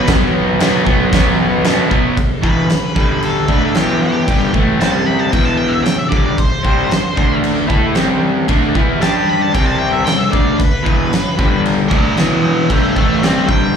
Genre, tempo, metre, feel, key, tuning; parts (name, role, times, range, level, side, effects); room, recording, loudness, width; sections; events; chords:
garage rock duo or trio; 114 BPM; 4/4; straight; E minor; A4 = 439 Hz
octave-fuzz lead guitar; melody; 0.0-13.8 s; G4 to B5; -21 LUFS; equal; distortion, slapback echo
crunchy overdriven guitar; riff; 0.0-13.8 s; E2 to A4; -15 LUFS; equal; slapback echo
oversized low-tuned drum kit; drums; 0.1-13.6 s; crash cymbal, kick drum, snare drum; -16 LUFS; equal
light reverb; live gig heard through the venue's PA, club reverb; -12 LUFS; side -7 dB against mid
0.0-2.2 A section; 2.2-13.8 B section
lead electric guitar solo 2.2-13.8
0.0 B5; 2.2 E5; 3.0 G5; 3.5 Em; 4.8 C5; 5.3 Em; 6.6 C5; 7.2 D5; 7.7 C5; 9.0 G5; 9.5 C5; 10.9 E5; 11.4 G5; 11.9 Em